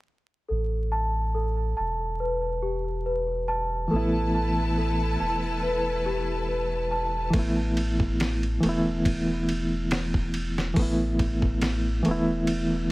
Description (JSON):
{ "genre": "trip hop", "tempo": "70 BPM", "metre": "4/4", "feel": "swing 54% on 16ths", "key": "unclear", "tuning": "A4 = 441 Hz", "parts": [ { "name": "celesta", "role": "arpeggios", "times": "0.5-7.4 s", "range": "G4 to A5", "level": "-29 LUFS", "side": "equal", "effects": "vintage 12-bit sampler grit, low-pass filter, tape echo" }, { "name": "soft dub sub bass", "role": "bass", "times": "0.5-12.9 s", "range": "E1 to A1", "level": "-29 LUFS", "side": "equal", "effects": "none" }, { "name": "bright reed electric piano", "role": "accompaniment", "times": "3.9-12.9 s", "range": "E3 to E4", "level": "-26 LUFS", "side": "equal", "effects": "tremolo, vintage 12-bit sampler grit, low-pass filter, tape echo" }, { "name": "bright studio string section", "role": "sustained chords", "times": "3.9-7.3 s", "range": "E4 to A5", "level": "-31 LUFS", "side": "left 1 dB", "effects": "none" }, { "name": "dusty soul sampler-style drum kit", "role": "drums", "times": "7.3-12.7 s", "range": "hi-hat, kick drum, ride cymbal, snare drum", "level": "-30 LUFS", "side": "equal", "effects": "none" } ], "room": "light reverb", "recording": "vinyl crackle", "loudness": "-24 LUFS", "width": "side -20 dB against mid", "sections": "0.5-7.3 A section; 7.3-12.9 B section", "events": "filter sweep on reed electric piano 7.3-12.9", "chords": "0.5 Asus2" }